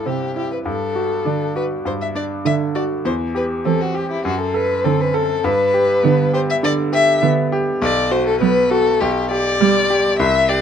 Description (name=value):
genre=quick classical-period movement for piano trio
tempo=101 BPM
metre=4/4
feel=straight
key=G major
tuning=A4 = 444 Hz
part: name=warm violin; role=melody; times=0.0-10.6 s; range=E4 to E5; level=-18 LUFS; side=left 3 dB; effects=none
part: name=bright grand piano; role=accompaniment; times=0.0-10.6 s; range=B1 to A4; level=-20 LUFS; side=equal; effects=none
part: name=warm cello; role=second line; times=0.1-10.0 s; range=C3 to G3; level=-20 LUFS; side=right 10 dB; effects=none
room=light reverb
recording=dark, warm production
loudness=-16 LUFS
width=side -8 dB against mid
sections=0.0-10.6 A section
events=none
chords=0.0 Am7/G (rootless); 0.7 D/G; 3.1 C/E; 4.3 D7/F#; 5.5 G; 7.8 B5; 9.0 G/B